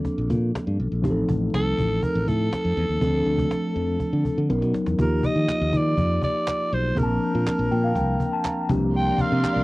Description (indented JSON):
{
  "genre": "polished 1980s jazz-funk pop",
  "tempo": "121 BPM",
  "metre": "4/4",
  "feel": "straight",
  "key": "Bb major",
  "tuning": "A4 = 440 Hz",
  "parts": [
    { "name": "mellow tine electric piano", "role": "accompaniment", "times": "0.0-9.6 s", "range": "F3 to Bb5", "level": "-25 LUFS", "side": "left 1 dB", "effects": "slow stereo tremolo, analog chorus" },
    { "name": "cajon", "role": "drums", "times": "0.0-9.6 s", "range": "none", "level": "-28 LUFS", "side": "equal", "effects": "cassette tape" },
    { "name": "modern bright fingered electric bass", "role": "bass", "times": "0.2-9.6 s", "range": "A1 to Eb3", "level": "-24 LUFS", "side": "equal", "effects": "none" },
    { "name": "raspy alto saxophone", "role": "melody", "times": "1.5-9.6 s", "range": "A4 to G5", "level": "-27 LUFS", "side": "right 1 dB", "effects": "cassette tape" },
    { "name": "group handclap", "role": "percussion", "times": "5.5-9.6 s", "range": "none", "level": "-36 LUFS", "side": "right 4 dB", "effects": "none" },
    { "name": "warm studio string section", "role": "sustained chords", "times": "8.9-9.6 s", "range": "Bb4 to C6", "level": "-32 LUFS", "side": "right 1 dB", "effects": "none" }
  ],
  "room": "light reverb",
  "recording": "home recording on cassette",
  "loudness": "-20 LUFS",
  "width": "side -20 dB against mid",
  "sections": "0.0-5.0 A section; 5.0-9.6 B section",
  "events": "drum fill 4.5-5.0; tine electric piano fill 7.5-8.9",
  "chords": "0.0 Bbmaj9; 1.0 F7/A; 3.0 Dm7; 4.5 Bmaj9; 5.0 Ebmaj9; 7.0 Bbmaj9; 8.7 C9sus4",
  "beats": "0.05 0.54 | 1.03 1.53 2.02 2.52 | 3.01 3.51 4.00 4.50 | 4.99 5.48 5.98 6.47 | 6.97 7.46 7.96 8.45 | 8.94 9.44"
}